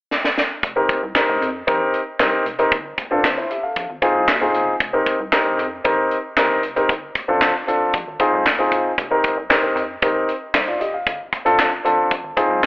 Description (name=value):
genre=early-eighties boogie funk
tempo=115 BPM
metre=4/4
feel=straight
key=F dorian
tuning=A4 = 445 Hz
part: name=tight funk drum kit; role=drums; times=0.1-12.7 s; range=handclaps, hi-hat, kick drum, snare drum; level=-20 LUFS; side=equal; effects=none
part: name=rubbery square bass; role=bass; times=0.6-12.7 s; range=F1 to G2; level=-32 LUFS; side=equal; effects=none
part: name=warm grand piano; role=accompaniment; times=0.8-12.6 s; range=C4 to F5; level=-18 LUFS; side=equal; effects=none
room=moderate plate reverb, RT60 2.0 s, small room ambience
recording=telephone sound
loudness=-16 LUFS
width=side -22 dB against mid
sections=0.6-12.7 A section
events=drum fill 0.1-0.6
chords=0.0 N.C.; 0.6 F9sus4; 2.7 G9sus4; 3.8 Bb9sus4 (rootless); 4.8 F9sus4; 6.9 G9sus4; 7.9 Bb9sus4 (rootless); 9.0 F9sus4; 11.1 G9sus4; 12.1 Bb9sus4